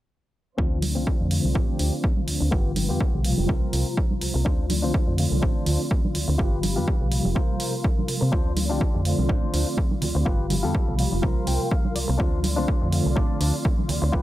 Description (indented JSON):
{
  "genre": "filtered disco house",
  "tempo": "124 BPM",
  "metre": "4/4",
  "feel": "swing 56% on 16ths",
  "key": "D minor",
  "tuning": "A4 = 440 Hz",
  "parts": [
    { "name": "mellow reed electric piano", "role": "accompaniment", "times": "0.6-14.2 s", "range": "C3 to F4", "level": "-28 LUFS", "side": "equal", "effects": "fast tremolo, phaser, vintage 12-bit sampler grit, sidechain pumping, low-pass filter" },
    { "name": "rich studio string section", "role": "sustained chords", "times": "0.6-14.2 s", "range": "D4 to C6", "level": "-36 LUFS", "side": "right 2 dB", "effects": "vintage 12-bit sampler grit, sidechain pumping, low-pass filter" },
    { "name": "direct-recorded clean electric guitar", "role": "riff", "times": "0.6-14.2 s", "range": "B3 to G5", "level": "-33 LUFS", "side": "left 4 dB", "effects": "vintage 12-bit sampler grit, sidechain pumping, low-pass filter" },
    { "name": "slap-like FM bass", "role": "bass", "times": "0.6-14.2 s", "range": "F1 to C3", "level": "-25 LUFS", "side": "equal", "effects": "sidechain pumping, low-pass filter" },
    { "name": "electronic kick drum", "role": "drums", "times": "0.6-14.2 s", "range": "none", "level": "-23 LUFS", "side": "equal", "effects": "overdrive, small room ambience" },
    { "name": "maracas and congas", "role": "percussion", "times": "0.6-14.2 s", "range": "none", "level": "-32 LUFS", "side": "right 4 dB", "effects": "sidechain pumping on perc, low-pass filter on perc" },
    { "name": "electronic hi-hat", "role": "drums", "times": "0.8-14.0 s", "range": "none", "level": "-32 LUFS", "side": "right 2 dB", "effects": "overdrive, sidechain pumping on hats, small room ambience" }
  ],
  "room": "little or no reverb",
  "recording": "none",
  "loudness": "-21 LUFS",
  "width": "side -15 dB against mid",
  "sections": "0.6-14.2 A section",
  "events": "filter sweep 0.6-14.2; clean electric guitar fill 11.2-12.2",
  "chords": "0.6 Dm7; 2.5 G7; 3.5 C7sus4; 4.5 Dm7; 6.4 G7; 7.4 C7sus4; 8.3 Dm7; 10.3 G7; 11.2 C7sus4; 12.2 Dm7"
}